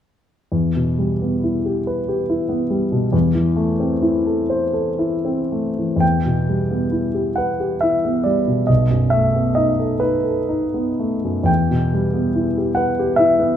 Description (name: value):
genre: classical, romantic nocturne for solo piano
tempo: 36-49 BPM (dotted quarters)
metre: 12/8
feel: rubato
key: E minor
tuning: A4 = 440 Hz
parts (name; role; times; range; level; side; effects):
- warm concert grand piano; solo; 0.5-13.6 s; B1 to G5; -16 LUFS; equal; none
room: moderate recital hall reverb, RT60 1.6 s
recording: none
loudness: -17 LUFS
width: side -9 dB against mid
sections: 0.5-6.0 A section; 6.0-13.6 B section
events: none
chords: 0.5 Em; 3.1 Am/E; 6.0 Em; 8.7 B7; 11.5 Em